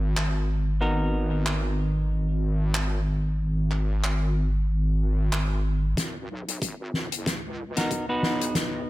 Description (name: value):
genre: glitch hop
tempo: 93 BPM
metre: 4/4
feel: swing 57% on 16ths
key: G# minor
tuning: A4 = 436 Hz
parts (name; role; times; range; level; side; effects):
- semi-hollow electric guitar; stabs; 0.0-8.9 s; B3 to B4; -28 LUFS; equal; sidechain pumping, low-pass filter, ping-pong delay
- wobble bass; bass; 0.0-8.9 s; F#1 to C#2; -25 LUFS; equal; chorus, high-pass filter
- soft-mallet drum kit; drums; 0.2-8.7 s; handclaps, hi-hat, snare drum; -30 LUFS; left 1 dB; none
- electronic kick drum; drums; 6.0-8.7 s; none; -32 LUFS; equal; overdrive, high-pass filter on kick, high-pass filter on room
room: small room reverb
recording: none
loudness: -24 LUFS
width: side -17 dB against mid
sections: 0.0-6.0 A section; 6.0-8.9 B section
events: build-up 6.0-8.9; drum fill 6.0-8.9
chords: 0.0 G#m9; 6.0 G#m7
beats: 0.17 | 0.81 1.46 2.10 2.75 | 3.39 4.04 4.68 5.33 | 5.97 6.62 7.26 7.91 | 8.55